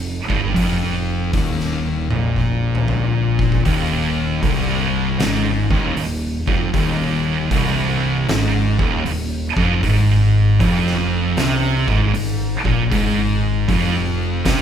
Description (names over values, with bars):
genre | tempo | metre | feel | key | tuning
stoner and doom metal | 78 BPM | 4/4 | swing 66% on 8ths | C minor | A4 = 441 Hz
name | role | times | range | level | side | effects
thick fuzz guitar | riff | 0.0-14.6 s | C2 to C3 | -21 LUFS | left 7 dB | distortion
thick fuzz guitar | riff | 0.0-14.6 s | C2 to C3 | -20 LUFS | right 6 dB | distortion
growling picked electric bass | bass | 0.0-14.6 s | C1 to C2 | -25 LUFS | equal | overdrive
oversized low-tuned drum kit | drums | 0.3-14.6 s | hi-hat, kick drum, snare drum, toms | -23 LUFS | equal | none
room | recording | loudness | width
moderate large studio reverb, RT60 1.1 s | band playing live in one room | -16 LUFS | side -8 dB against mid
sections
0.0-14.6 A section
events
drum fill 2.1-3.7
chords
0.0 Ebadd9; 3.7 Cmadd11; 9.8 Fmadd11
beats
| 0.56 1.33 2.11 2.88 | 3.65 4.42 5.20 5.97 | 6.74 7.51 8.29 9.06 | 9.83 10.60 11.37 12.14 | 12.91 13.68 14.45